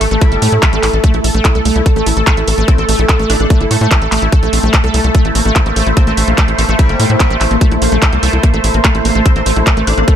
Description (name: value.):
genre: psychedelic trance.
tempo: 146 BPM.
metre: 4/4.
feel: straight.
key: A phrygian.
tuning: A4 = 440 Hz.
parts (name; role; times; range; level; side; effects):
metallic wobble bass; second line; 0.0-10.0 s; G3 to D4; -25 LUFS; left 4 dB; wide subtle chorus, sidechain pumping, high-pass filter, dub echo.
bubbling stepped-filter texture; sustained chords; 0.0-10.2 s; A3 to C5; -17 LUFS; right 2 dB; chorus, built-in reverb, vintage 12-bit sampler grit, sidechain pumping.
wide unison pluck; riff; 0.0-10.1 s; A3 to A4; -18 LUFS; equal; auto-pan, cassette tape, sidechain pumping, ping-pong delay.
tight sequencer bass; bass; 0.0-10.0 s; G1 to A2; -14 LUFS; equal; none.
drum and bass drum kit; drums; 0.0-10.2 s; handclaps, hi-hat; -18 LUFS; right 1 dB; none.
warbly tape-like pad; texture; 1.3-10.2 s; E4 to A5; -30 LUFS; left 2 dB; none.
electronic kick drum; drums; 0.2-10.2 s; none; -10 LUFS; equal; none.
noise sweep; sound effects; 10.1-10.2 s; none; barely audible; none; none.
room: little or no reverb.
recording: none.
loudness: -9 LUFS.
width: side -9 dB against mid.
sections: 0.0-10.2 A section.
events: none.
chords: 0.0 A5.